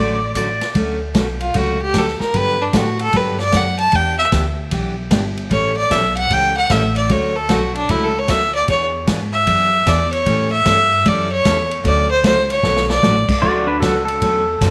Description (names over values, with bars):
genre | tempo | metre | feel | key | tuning
country, western swing | 152 BPM | 4/4 | swing 66% on 8ths | D major | A4 = 440 Hz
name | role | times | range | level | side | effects
clear fiddle | melody | 0.0-13.3 s | D4 to A5 | -19 LUFS | equal | none
pedal steel guitar | second line | 0.0-0.7, 13.4-14.7 s | D4 to D5 | -21 LUFS | equal | none
picked steel-string acoustic guitar | accompaniment | 0.0-14.7 s | D3 to A4 | -25 LUFS | equal | none
upright bass | bass | 0.0-14.7 s | G1 to A2 | -22 LUFS | equal | none
swinging big-band drum kit | drums | 0.4-14.7 s | crash cymbal, hi-hat, kick drum, ride cymbal, snare drum | -28 LUFS | equal | none
room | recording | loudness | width
moderate echo chamber reverb, RT60 1.8 s, studio reverb | none | -17 LUFS | mono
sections
0.7-13.4 A section; 13.4-14.7 A section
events
fiddle solo 0.7-13.4; drum fill 12.6-13.0; pedal steel guitar solo 13.4-14.7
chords
0.0 Dmaj7; 2.3 Gmaj7; 3.9 Em7; 5.5 A7; 7.1 Dmaj7; 8.7 E7; 10.3 A7; 11.8 Dmaj7